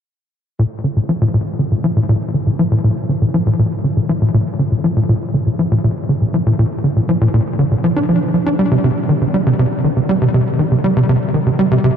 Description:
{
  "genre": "ambient",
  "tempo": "120 BPM",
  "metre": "4/4",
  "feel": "straight",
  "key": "Bb major",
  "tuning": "A4 = 440 Hz",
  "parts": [
    { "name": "tight sequencer bass", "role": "riff", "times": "0.6-11.9 s", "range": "Bb2 to D4", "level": "-13 LUFS", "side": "equal", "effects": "lush chorus, ping-pong delay" }
  ],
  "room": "wet huge ambient reverb, RT60 8.4 s",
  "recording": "dark, warm production",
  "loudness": "-13 LUFS",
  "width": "side -8 dB against mid",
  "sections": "0.6-12.0 A section",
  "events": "filter sweep on analog synth bass 0.6-12.0",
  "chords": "none",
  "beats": "| 0.59 1.09 1.59 2.09 | 2.59 3.09 3.59 4.09 | 4.59 5.09 5.59 6.09 | 6.59 7.09 7.59 8.09 | 8.59 9.09 9.59 10.09 | 10.59 11.09 11.59"
}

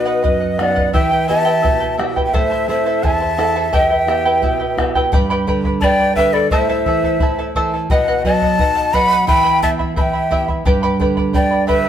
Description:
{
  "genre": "andean folk, Andean ensemble",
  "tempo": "86 BPM",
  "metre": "2/4",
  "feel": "straight",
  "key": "E harmonic minor",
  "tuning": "A4 = 437 Hz",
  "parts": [
    { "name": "breathy large quena", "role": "melody", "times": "0.0-11.9 s", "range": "D5 to B5", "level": "-18 LUFS", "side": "equal", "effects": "none" },
    { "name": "breathy large pan pipes", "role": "second line", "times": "0.0-11.9 s", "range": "A4 to G5", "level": "-19 LUFS", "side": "left 2 dB", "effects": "none" },
    { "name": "charango", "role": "accompaniment", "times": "0.0-11.9 s", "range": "E4 to B5", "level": "-20 LUFS", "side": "right 1 dB", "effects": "none" },
    { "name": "flamenco guitar", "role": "accompaniment", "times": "0.0-11.9 s", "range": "E2 to B4", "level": "-21 LUFS", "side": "right 3 dB", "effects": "none" },
    { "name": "bombo", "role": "percussion", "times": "0.2-11.8 s", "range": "none", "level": "-21 LUFS", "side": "left 1 dB", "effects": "none" }
  ],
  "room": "moderate stone room reverb, RT60 1.1 s",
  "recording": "band playing live in one room",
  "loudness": "-13 LUFS",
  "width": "side -10 dB against mid",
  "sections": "0.0-5.1 A section; 5.1-11.9 B section",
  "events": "none",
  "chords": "0.0 B; 0.9 Em; 2.3 Am; 3.7 Em; 5.1 G; 6.5 Am; 7.9 B; 9.3 Em; 10.7 G",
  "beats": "0.25 | 0.95 1.64 | 2.34 3.04 | 3.74 4.43 | 5.13 5.82 | 6.51 7.21 | 7.90 8.59 | 9.28 9.97 | 10.65 11.34"
}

